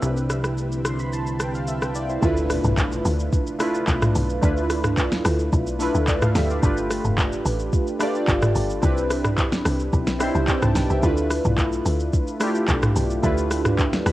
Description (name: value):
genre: amapiano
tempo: 109 BPM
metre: 4/4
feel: straight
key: D dorian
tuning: A4 = 440 Hz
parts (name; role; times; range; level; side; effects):
- analog pluck; melody; 0.0-0.8 s; E5; -43 LUFS; right 1 dB; none
- warm analog keys; accompaniment; 0.0-14.1 s; A3 to C6; -24 LUFS; right 1 dB; chorus, phaser, cassette tape
- ethereal airy pad; sustained chords; 0.0-2.2 s; D3 to B4; -34 LUFS; equal; ensemble chorus, built-in reverb, sidechain pumping, cassette tape
- plucky analog bass; bass; 0.0-2.2 s; C2; -26 LUFS; equal; none
- smooth R&B drum kit; drums; 0.0-14.1 s; handclaps, hi-hat, kick drum, rim click, shaker, snare drum, toms; -23 LUFS; equal; cassette tape
- woody log drum bass; bass; 2.2-14.1 s; F1 to D2; -24 LUFS; equal; none
- impact; sound effects; 2.2-4.4 s; none; -36 LUFS; equal; none
room: light reverb, digital ambience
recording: home recording on cassette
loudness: -19 LUFS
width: side -16 dB against mid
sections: 0.0-2.2 A section; 2.2-14.1 B section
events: synth keys fill 0.6-2.2, 9.9-11.0, 13.8-14.1; drop 2.2-14.1; impact 2.2-4.4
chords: 0.0 Cmaj9; 2.2 Dm69; 6.6 G9; 8.8 Cmaj9; 11.0 Dm69